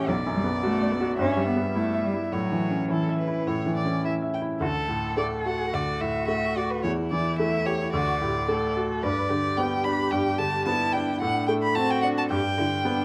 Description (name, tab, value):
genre	quick classical-period movement for piano trio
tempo	109 BPM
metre	4/4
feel	rubato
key	D major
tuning	A4 = 439 Hz
part	warm violin	melody	0.0-13.0 s	A4 to B5	-31 LUFS	equal	none
part	warm cello	second line	0.0-13.0 s	E3 to B4	-32 LUFS	equal	none
part	bright baby grand piano	accompaniment	0.0-13.0 s	B1 to E5	-29 LUFS	equal	none
room	moderate recital hall reverb, RT60 1.5 s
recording	close, detailed microphones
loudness	-26 LUFS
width	mono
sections	0.0-4.6 A section; 4.6-13.0 B section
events	none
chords	0.1 Bm; 1.2 Em/G; 2.3 A; 4.6 D; 6.8 A5/E; 7.9 D; 9.0 G; 11.2 D7/A; 12.3 G